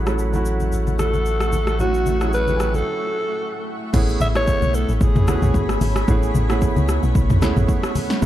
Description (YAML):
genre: amapiano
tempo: 112 BPM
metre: 4/4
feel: swing 55% on 16ths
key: A major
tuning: A4 = 438 Hz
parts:
  - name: warm concert grand piano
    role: accompaniment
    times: 0.0-8.3 s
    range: F#3 to G#5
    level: -26 LUFS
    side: right 5 dB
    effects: low-pass filter
  - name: granular cloud pad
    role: sustained chords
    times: 0.0-8.3 s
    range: A3 to C#6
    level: -29 LUFS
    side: equal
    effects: built-in reverb, low-pass filter
  - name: punchy sub bass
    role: bass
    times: 0.0-2.8 s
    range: A1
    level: -22 LUFS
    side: equal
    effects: none
  - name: deep house drum kit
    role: drums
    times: 0.1-8.3 s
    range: crash cymbal, hi-hat, kick drum, rim click, shaker, snare drum, toms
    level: -21 LUFS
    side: equal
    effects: overdrive
  - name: congas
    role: percussion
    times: 0.3-8.3 s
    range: none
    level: -27 LUFS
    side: left 3 dB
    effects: none
  - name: breathy alto saxophone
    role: melody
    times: 1.0-5.8 s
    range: F#4 to E5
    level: -23 LUFS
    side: equal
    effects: low-pass filter, ping-pong delay
  - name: deep log drum bass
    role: bass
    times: 3.9-8.3 s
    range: G#1 to C#2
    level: -20 LUFS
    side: equal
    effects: none
room: little or no reverb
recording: dark, warm production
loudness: -17 LUFS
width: side -13 dB against mid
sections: 0.0-3.9 A section; 3.9-8.3 B section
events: filter sweep 0.0-3.9; break 2.9-3.9; drop 3.9-8.3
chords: 0.0 F#m7/A; 3.9 Amaj9